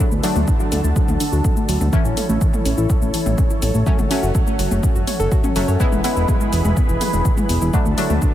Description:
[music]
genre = melodic techno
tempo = 124 BPM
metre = 4/4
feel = straight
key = unclear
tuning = A4 = 441 Hz
[part]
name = warm analog pad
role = sustained chords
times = 0.0-8.3 s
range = D3 to B5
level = -26 LUFS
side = right 1 dB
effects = wide subtle chorus, sidechain pumping
[part]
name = soft round pluck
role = arpeggios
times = 0.0-8.3 s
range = E3 to C#5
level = -24 LUFS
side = equal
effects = chorus, sidechain pumping, analog delay
[part]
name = synth brass stab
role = stabs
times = 0.0-8.2 s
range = E3 to E4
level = -26 LUFS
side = left 2 dB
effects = chorus, phaser, sidechain pumping, analog delay
[part]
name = fat analog bass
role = bass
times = 0.1-8.2 s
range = E1 to F#2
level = -20 LUFS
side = equal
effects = sidechain pumping
[part]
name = deep house drum kit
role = drums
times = 0.1-8.3 s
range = hi-hat, shaker, toms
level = -27 LUFS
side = left 2 dB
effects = none
[part]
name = electronic kick drum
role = drums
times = 0.5-8.3 s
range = none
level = -18 LUFS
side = equal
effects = none
[sound]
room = light reverb, digital ambience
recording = none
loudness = -16 LUFS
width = side -12 dB against mid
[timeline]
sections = 0.0-8.3 A section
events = none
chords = 0.0 D; 1.9 A; 3.9 F#m; 5.8 E; 7.7 D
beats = 0.48 0.96 1.45 | 1.93 2.41 2.90 3.38 | 3.86 4.35 4.83 5.32 | 5.80 6.28 6.77 7.25 | 7.74 8.22

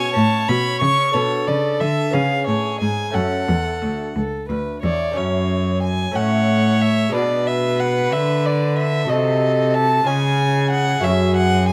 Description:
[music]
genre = classical, baroque-style sonata movement with continuo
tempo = 61 BPM (dotted quarters)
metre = 6/8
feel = straight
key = F# minor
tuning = A4 = 440 Hz
[part]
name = warm violin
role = melody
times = 0.0-11.7 s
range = G#4 to C#5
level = -27 LUFS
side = equal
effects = none
[part]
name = rich violin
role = second line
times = 0.0-11.7 s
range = C#5 to C#6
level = -24 LUFS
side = equal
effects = none
[part]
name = lute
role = accompaniment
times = 0.0-11.7 s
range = D2 to Eb5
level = -29 LUFS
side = equal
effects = none
[part]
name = warm cello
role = bass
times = 0.0-11.7 s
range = C#2 to D3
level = -22 LUFS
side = equal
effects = none
[sound]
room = little or no reverb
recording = close, detailed microphones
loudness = -19 LUFS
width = mono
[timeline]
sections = 0.0-5.2 A section; 5.2-11.7 B section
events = none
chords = 0.2 Aadd9; 1.1 Bm; 2.1 C#5; 3.2 F#m; 6.2 A; 7.1 G#dim/B; 9.1 Cdim7; 10.1 C#; 11.0 F#m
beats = 0.17 | 1.15 2.14 | 3.15 4.16 | 5.17 6.16 | 7.14 8.12 | 9.10 10.07 | 11.05

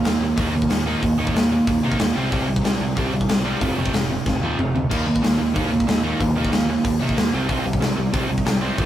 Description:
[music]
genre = punk rock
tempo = 186 BPM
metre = 4/4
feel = straight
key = unclear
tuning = A4 = 439 Hz
[part]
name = biting overdriven guitar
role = riff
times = 0.0-8.9 s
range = F2 to Eb4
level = -21 LUFS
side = right 3 dB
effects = none
[part]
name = sludgy distorted guitar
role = riff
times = 0.0-8.9 s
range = F2 to Eb4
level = -28 LUFS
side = left 6 dB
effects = overdrive
[part]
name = growling picked electric bass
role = bass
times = 0.0-8.9 s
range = F1 to C3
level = -28 LUFS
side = equal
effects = overdrive
[part]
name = big rock drum kit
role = drums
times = 0.0-8.9 s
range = crash cymbal, hi-hat, kick drum, snare drum, toms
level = -23 LUFS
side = left 1 dB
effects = none
[sound]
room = light reverb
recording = rough rehearsal-room recording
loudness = -18 LUFS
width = side -12 dB against mid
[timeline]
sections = 0.0-8.9 A section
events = drum fill 4.3-4.9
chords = 0.0 Eb5; 2.2 C5; 3.6 F5; 4.9 Eb5; 7.3 C5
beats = 0.06 0.38 0.70 | 1.03 1.35 1.68 2.00 | 2.32 2.65 2.97 3.29 | 3.62 3.94 4.26 4.59 | 4.91 5.23 5.55 5.88 | 6.20 6.52 6.85 7.17 | 7.49 7.82 8.14 8.46 | 8.78

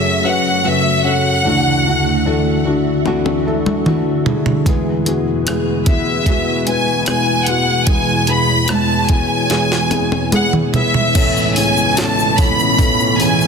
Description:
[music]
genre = pop ballad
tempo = 74 BPM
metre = 4/4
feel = straight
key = A major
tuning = A4 = 439 Hz
[part]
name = clear studio violin section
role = melody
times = 0.0-13.5 s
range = E5 to B5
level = -17 LUFS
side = equal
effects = none
[part]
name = felt-muted upright piano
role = accompaniment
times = 0.0-13.5 s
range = F#1 to B4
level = -20 LUFS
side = left 6 dB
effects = none
[part]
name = glassy FM pad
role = sustained chords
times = 0.0-13.5 s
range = D2 to E5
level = -20 LUFS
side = right 1 dB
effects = ensemble chorus, built-in reverb
[part]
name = nylon-string guitar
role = arpeggios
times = 0.0-13.5 s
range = E2 to G#4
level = -23 LUFS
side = right 6 dB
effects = ping-pong delay
[part]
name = jungle sampler-style drum kit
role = drums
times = 3.1-13.4 s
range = crash cymbal, hi-hat, kick drum, rim click, snare drum, toms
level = -18 LUFS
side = right 1 dB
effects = soft clipping on snare
[part]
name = warm chamber cello section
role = second line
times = 11.1-13.5 s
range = C#2 to E3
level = -22 LUFS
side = right 4 dB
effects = none
[part]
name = tube shaker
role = percussion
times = 11.2-13.5 s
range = none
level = -32 LUFS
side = left 6 dB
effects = none
[sound]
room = moderate concert hall reverb, RT60 2.3 s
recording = dense, heavily limited modern master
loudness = -13 LUFS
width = side -5 dB against mid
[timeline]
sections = 0.0-11.2 A section; 11.2-13.5 B section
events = drum fill 3.1-4.7, 9.5-11.2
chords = 0.0 F#m; 1.5 Dadd9; 4.7 E; 11.2 Aadd9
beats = 0.65 | 1.46 2.26 3.06 3.86 | 4.66 5.47 6.27 7.07 | 7.88 8.69 9.50 10.33 | 11.15 11.97 12.79

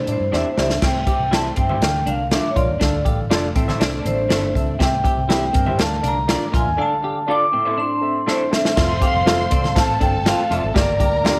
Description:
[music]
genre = uptempo 1960s-style soul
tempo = 121 BPM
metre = 4/4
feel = straight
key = F major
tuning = A4 = 440 Hz
[part]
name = vibraphone with medium hard mallets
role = melody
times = 0.0-11.4 s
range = C5 to D6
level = -24 LUFS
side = equal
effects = none
[part]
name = warm concert grand piano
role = accompaniment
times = 0.0-11.4 s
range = G2 to F5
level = -30 LUFS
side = equal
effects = none
[part]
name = semi-hollow electric guitar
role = riff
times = 0.0-11.4 s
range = C4 to G4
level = -30 LUFS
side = equal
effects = ensemble chorus
[part]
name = vintage muted fingered electric bass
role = bass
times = 0.0-11.4 s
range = F1 to A2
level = -27 LUFS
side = equal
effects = none
[part]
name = swinging big-band drum kit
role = drums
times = 0.1-11.4 s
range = crash cymbal, hi-hat, kick drum, snare drum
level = -23 LUFS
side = equal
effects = none
[part]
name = electric guitar through a small old amp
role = stabs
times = 0.3-11.4 s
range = D4 to F5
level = -29 LUFS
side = equal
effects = lush chorus
[part]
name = congas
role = percussion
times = 1.1-11.4 s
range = none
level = -33 LUFS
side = equal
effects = none
[part]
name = warm studio string section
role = second line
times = 8.8-11.4 s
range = A4 to C6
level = -28 LUFS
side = equal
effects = none
[sound]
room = light reverb, small room ambience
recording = none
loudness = -19 LUFS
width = mono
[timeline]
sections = 0.8-8.8 A section; 8.8-11.4 B section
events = drum fill 0.3-0.8, 8.3-8.8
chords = 0.0 Cadd9; 0.8 C; 1.8 Bb; 2.8 Dm; 3.6 Am; 4.8 C; 5.8 Bb; 6.8 Dm; 7.5 Am; 8.8 F; 10.8 Gm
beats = 0.32 | 0.82 1.32 1.82 2.32 | 2.81 3.31 3.81 4.31 | 4.80 5.30 5.80 6.29 | 6.79 7.29 7.78 8.28 | 8.77 9.27 9.77 10.26 | 10.76 11.25

